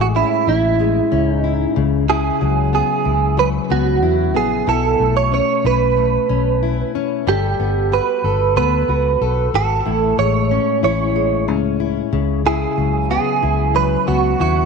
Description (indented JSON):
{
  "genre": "indie pop, bedroom pop",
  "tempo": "93 BPM",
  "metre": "4/4",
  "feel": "straight",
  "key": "unclear",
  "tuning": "A4 = 441 Hz",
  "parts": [
    { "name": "direct-recorded clean electric guitar", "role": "melody", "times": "0.0-14.7 s", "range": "E4 to C#5", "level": "-18 LUFS", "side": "right 10 dB", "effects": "ensemble chorus, tape echo" },
    { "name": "fingerpicked plugged-in steel-string acoustic guitar", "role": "accompaniment", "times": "0.0-14.7 s", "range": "A2 to A4", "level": "-20 LUFS", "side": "left 14 dB", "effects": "lush chorus, vibrato effect" },
    { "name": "vintage muted fingered electric bass", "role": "bass", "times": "0.0-14.7 s", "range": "G1 to E2", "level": "-20 LUFS", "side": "equal", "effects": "none" }
  ],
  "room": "light reverb, studio reverb",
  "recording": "1960s-style stereo with parts hard left and right",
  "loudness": "-15 LUFS",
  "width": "side -5 dB against mid",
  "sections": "0.0-14.7 A section",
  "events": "none",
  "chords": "0.0 Amaj7; 1.8 C#m7; 4.7 B9sus4; 7.3 Gmaj9; 9.9 Amaj7; 12.1 C#m11",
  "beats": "0.15 0.80 1.44 | 2.09 2.74 3.38 4.03 | 4.68 5.33 5.97 6.62 | 7.27 7.92 8.56 9.21 | 9.86 10.51 11.16 11.80 | 12.45 13.10 13.75 14.40"
}